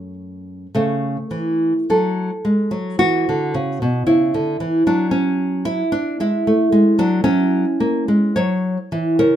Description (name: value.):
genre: classical, baroque-style dance for nylon-string guitar.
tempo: 52-57 BPM.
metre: 3/4.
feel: rubato.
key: A major.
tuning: A4 = 439 Hz.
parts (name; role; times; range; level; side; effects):
nylon-string guitar; solo; 0.0-9.4 s; F#2 to C#5; -16 LUFS; equal; none.
room: moderate small room reverb, RT60 0.6 s.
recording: minimal, uncompressed stereo recording.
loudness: -16 LUFS.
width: side -10 dB against mid.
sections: 0.7-9.4 A section.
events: none.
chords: 0.0 F#m; 0.7 A/C#; 7.3 F#7.